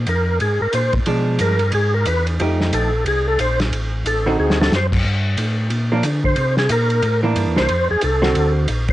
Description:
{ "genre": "soul jazz organ trio", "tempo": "181 BPM", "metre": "4/4", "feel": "swing 62% on 8ths", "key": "F mixolydian", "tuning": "A4 = 440 Hz", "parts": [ { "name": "mellow tonewheel organ", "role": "bass", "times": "0.0-8.9 s", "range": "A1 to D3", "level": "-20 LUFS", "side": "equal", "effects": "slow rotary speaker" }, { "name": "percussive tonewheel organ", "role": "melody", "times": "0.1-8.9 s", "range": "Ab4 to C5", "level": "-20 LUFS", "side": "equal", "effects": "slow rotary speaker, overdrive, chorus vibrato" }, { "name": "warm soul drum kit", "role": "drums", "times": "0.1-8.9 s", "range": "crash cymbal, hi-hat, kick drum, ride cymbal, snare drum", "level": "-23 LUFS", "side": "equal", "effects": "none" }, { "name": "vintage hollow-body jazz guitar", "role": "accompaniment", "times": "1.1-8.7 s", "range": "D3 to G4", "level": "-21 LUFS", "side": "right 2 dB", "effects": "cassette tape" } ], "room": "light reverb, studio reverb", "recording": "home recording on cassette, nothing above 10.3 kHz", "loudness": "-16 LUFS", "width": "side -15 dB against mid", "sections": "0.0-8.9 A section", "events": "tonewheel organ solo 0.0-8.9; drum fill 4.4-4.7", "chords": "0.0 Bb7sus2; 1.1 Bdim7; 2.4 F9; 3.7 D7b9; 5.0 Gm; 6.4 C9; 7.7 F; 8.4 D7b13", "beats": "0.08 0.41 0.74 | 1.07 1.40 1.74 2.07 | 2.40 2.73 3.06 3.39 | 3.72 4.05 4.39 4.72 | 5.05 5.38 5.71 6.04 | 6.37 6.70 7.04 7.37 | 7.70 8.03 8.36 8.69" }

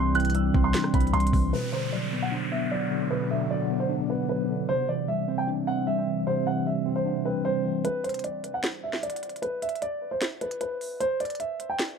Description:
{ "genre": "hip hop, trap", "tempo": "152 BPM", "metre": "4/4", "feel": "half-time", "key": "unclear", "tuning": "A4 = 440 Hz", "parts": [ { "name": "dark concert grand piano", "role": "melody", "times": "0.0-11.8 s", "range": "B4 to F#6", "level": "-29 LUFS", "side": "right 2 dB", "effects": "low-pass filter, tape echo" }, { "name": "mellow tine electric piano", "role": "accompaniment", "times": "0.0-7.9 s", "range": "B2 to D4", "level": "-28 LUFS", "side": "left 1 dB", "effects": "medium stereo tremolo, low-pass filter, tape echo" }, { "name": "deep dark ambient pad", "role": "sustained chords", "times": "0.0-7.8 s", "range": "B2 to G5", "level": "-36 LUFS", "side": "right 2 dB", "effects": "chorus, built-in reverb" }, { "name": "long sustained 808-style bass", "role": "bass", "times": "0.0-1.5 s", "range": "C2", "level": "-26 LUFS", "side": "equal", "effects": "none" }, { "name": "trap drum kit", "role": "drums", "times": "0.1-1.4, 7.8-11.9 s", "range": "hi-hat, kick drum, rim click, snare drum", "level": "-29 LUFS", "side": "equal", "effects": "vintage 12-bit sampler grit" }, { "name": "downlifter", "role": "sound effects", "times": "1.5-4.7 s", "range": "none", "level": "-37 LUFS", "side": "equal", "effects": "none" } ], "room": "little or no reverb", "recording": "echo-heavy mix", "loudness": "-25 LUFS", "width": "side -6 dB against mid", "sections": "0.0-1.5 A section; 1.5-7.8 B section; 7.8-12.0 C section", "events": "break 7.8-12.0", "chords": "0.0 Cadd9; 1.5 Bm; 4.7 Cadd9; 7.8 N.C.", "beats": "0.35 0.74 1.14 | 1.53 1.93 2.32 2.71 | 3.11 3.50 3.90 4.29 | 4.69 5.08 5.48 5.87 | 6.27 6.66 7.06 7.45 | 7.85 8.24 8.64 9.03 | 9.43 9.82 10.21 10.61 | 11.00 11.40 11.79" }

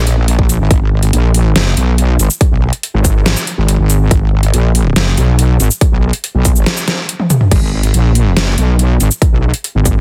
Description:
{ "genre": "heavy wobble dubstep", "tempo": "141 BPM", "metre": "4/4", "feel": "half-time", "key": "G# minor", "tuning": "A4 = 437 Hz", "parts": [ { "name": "wobble bass", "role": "bass", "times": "0.0-10.0 s", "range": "F#1 to B1", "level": "-13 LUFS", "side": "equal", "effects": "chorus, overdrive" }, { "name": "dubstep drum kit", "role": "drums", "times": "0.1-9.9 s", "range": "crash cymbal, hi-hat, shaker, snare drum, toms", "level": "-18 LUFS", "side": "equal", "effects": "overdrive" }, { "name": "electronic kick drum", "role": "drums", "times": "0.4-9.9 s", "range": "none", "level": "-14 LUFS", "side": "equal", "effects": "overdrive" } ], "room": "little or no reverb", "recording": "dense, heavily limited modern master", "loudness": "-12 LUFS", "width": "mono", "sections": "0.0-10.0 A section", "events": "drum fill 7.2-7.5", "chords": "none", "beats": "0.28 | 0.71 1.13 1.56 1.98 | 2.41 2.83 3.26 3.69 | 4.11 4.54 4.96 5.39 | 5.81 6.24 6.66 7.09 | 7.51 7.94 8.37 8.79 | 9.22 9.64" }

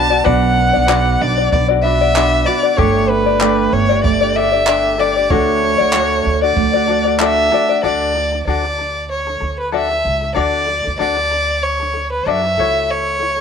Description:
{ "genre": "acoustic pop", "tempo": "95 BPM", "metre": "4/4", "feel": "swing 55% on 16ths", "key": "D major", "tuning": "A4 = 440 Hz", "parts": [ { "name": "rich violin", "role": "melody", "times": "0.0-13.4 s", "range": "B4 to A5", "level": "-17 LUFS", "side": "equal", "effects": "none" }, { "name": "tenor ukulele", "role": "accompaniment", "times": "0.0-13.4 s", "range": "D4 to D5", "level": "-18 LUFS", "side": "left 10 dB", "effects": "none" }, { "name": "fingerpicked steel-string acoustic guitar", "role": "arpeggios", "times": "0.0-8.4 s", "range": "A3 to G4", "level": "-21 LUFS", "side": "right 15 dB", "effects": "none" }, { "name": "upright bass", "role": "bass", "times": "0.0-13.4 s", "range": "G1 to F#2", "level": "-22 LUFS", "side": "right 2 dB", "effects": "none" }, { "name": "jazz brush drum kit", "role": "drums", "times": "0.3-7.4 s", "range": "handclaps, kick drum", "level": "-20 LUFS", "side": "right 2 dB", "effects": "none" } ], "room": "moderate spring reverb, RT60 2.2 s", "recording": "1960s-style stereo with parts hard left and right", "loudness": "-13 LUFS", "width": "side -7 dB against mid", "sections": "0.0-7.8 A section; 7.8-13.4 B section", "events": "none", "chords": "0.0 Bm; 2.8 Gsus2; 5.3 D; 12.6 F#m7", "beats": "| 0.26 0.89 1.52 2.15 | 2.78 3.41 4.04 4.68 | 5.31 5.94 6.57 7.20 | 7.83 8.46 9.10 9.73 | 10.36 10.99 11.63 12.26 | 12.89" }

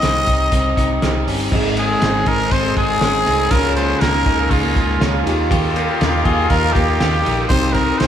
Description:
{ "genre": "jangly indie pop", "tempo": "120 BPM", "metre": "4/4", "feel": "straight", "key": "Ab major", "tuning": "A4 = 445 Hz", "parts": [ { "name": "growling trumpet", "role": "melody", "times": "0.0-8.1 s", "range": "F4 to Eb5", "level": "-19 LUFS", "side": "equal", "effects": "none" }, { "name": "crunchy overdriven guitar", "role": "accompaniment", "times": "0.0-8.1 s", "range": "Ab2 to Ab4", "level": "-25 LUFS", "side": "right 3 dB", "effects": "none" }, { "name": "warm upright piano", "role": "accompaniment", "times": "0.0-8.1 s", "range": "C4 to Bb4", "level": "-28 LUFS", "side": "right 3 dB", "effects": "none" }, { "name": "direct-recorded clean electric guitar", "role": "arpeggios", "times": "0.0-8.1 s", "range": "Ab2 to G4", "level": "-23 LUFS", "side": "left 3 dB", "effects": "spring reverb" }, { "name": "vintage muted fingered electric bass", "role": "bass", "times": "0.0-8.1 s", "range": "G1 to Eb2", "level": "-22 LUFS", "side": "equal", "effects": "none" }, { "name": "cloth-damped thuddy drum kit", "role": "drums", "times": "0.0-8.1 s", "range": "crash cymbal, hi-hat, kick drum, ride cymbal, snare drum", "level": "-20 LUFS", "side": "equal", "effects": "none" }, { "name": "dark cello", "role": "second line", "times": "1.5-8.1 s", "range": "Bb3 to F4", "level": "-26 LUFS", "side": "left 3 dB", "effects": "none" }, { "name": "phased analog pad", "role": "sustained chords", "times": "1.5-8.1 s", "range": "G4 to Eb6", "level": "-29 LUFS", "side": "equal", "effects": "none" } ], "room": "wet large studio reverb, RT60 1.0 s", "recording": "band playing live in one room", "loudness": "-14 LUFS", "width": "side -9 dB against mid", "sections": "0.0-1.5 A section; 1.5-8.1 B section", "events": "none", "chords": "0.0 Cm; 1.5 Ab; 3.5 Db6; 5.3 Ebadd9; 7.5 Cm", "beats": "0.03 0.53 1.02 | 1.52 2.02 2.52 3.02 | 3.52 4.01 4.51 5.01 | 5.51 6.00 6.50 7.00 | 7.50 8.00" }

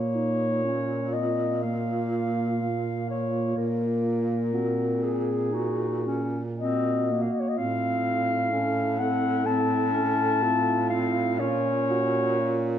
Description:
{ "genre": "classical, lyrical piece for single-reed quartet", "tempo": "54-64 BPM", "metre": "4/4", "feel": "rubato", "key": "Bb minor", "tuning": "A4 = 438 Hz", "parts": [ { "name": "mellow clarinet", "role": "melody", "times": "0.0-12.8 s", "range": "Gb4 to A5", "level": "-28 LUFS", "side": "left 3 dB", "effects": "none" }, { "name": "dark alto saxophone", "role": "second line", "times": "0.0-12.8 s", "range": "Eb4 to A4", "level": "-32 LUFS", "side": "right 6 dB", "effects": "none" }, { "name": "mellow clarinet", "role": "accompaniment", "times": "0.0-12.8 s", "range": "Bb3 to Eb4", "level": "-29 LUFS", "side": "equal", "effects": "none" }, { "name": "mellow baritone saxophone", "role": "bass", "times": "0.0-12.8 s", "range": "A2 to Bb2", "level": "-30 LUFS", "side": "right 2 dB", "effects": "none" } ], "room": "wet recital hall reverb, RT60 1.3 s", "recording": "none", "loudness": "-23 LUFS", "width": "side -10 dB against mid", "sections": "0.0-12.8 A section", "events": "none", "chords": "0.0 Bbm; 3.6 Cm7b5/Bb; 7.6 F/A; 11.4 Bbm", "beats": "0.64 1.64 2.61 | 3.58 4.55 5.54 6.61 | 7.58 8.52 9.46 10.43 | 11.40 12.37" }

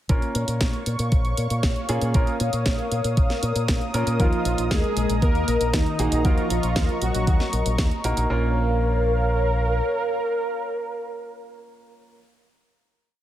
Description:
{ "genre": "italo disco", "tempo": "117 BPM", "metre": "4/4", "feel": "straight", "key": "Bb minor", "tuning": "A4 = 442 Hz", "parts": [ { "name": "warm analog pad", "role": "sustained chords", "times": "0.1-12.2 s", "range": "Bb4 to Eb6", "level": "-28 LUFS", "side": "left 2 dB", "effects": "chorus" }, { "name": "clear grand piano", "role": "stabs", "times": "0.1-12.2 s", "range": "Bb3 to Bb4", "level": "-30 LUFS", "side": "right 2 dB", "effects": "digital delay" }, { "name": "fingered electric bass with an envelope filter", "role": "bass", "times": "0.1-9.8 s", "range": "Bb1 to Bb2", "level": "-24 LUFS", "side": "equal", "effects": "none" }, { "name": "electronic kick drum", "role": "drums", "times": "0.1-7.9 s", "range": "none", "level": "-22 LUFS", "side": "equal", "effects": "overdrive" }, { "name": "house drum kit", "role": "drums", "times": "0.1-8.3 s", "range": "hi-hat, snare drum", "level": "-29 LUFS", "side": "right 1 dB", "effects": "none" }, { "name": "analog synth brass", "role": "melody", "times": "4.2-12.2 s", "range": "Eb3 to Bb4", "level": "-26 LUFS", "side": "right 1 dB", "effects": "chorus, tape echo" } ], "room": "light reverb", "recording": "none", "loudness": "-20 LUFS", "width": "side -12 dB against mid", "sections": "0.1-8.3 verse; 8.3-12.4 final chord", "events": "none", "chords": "0.1 Bbm; 4.2 Ebm; 8.3 Bbm", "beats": "| 0.09 0.61 1.12 1.63 | 2.15 2.66 3.17 3.68 | 4.20 4.71 5.22 5.74 | 6.25 6.76 7.27 7.79 | 8.30 8.81 9.32 9.84 | 10.35 10.86 11.38 11.89" }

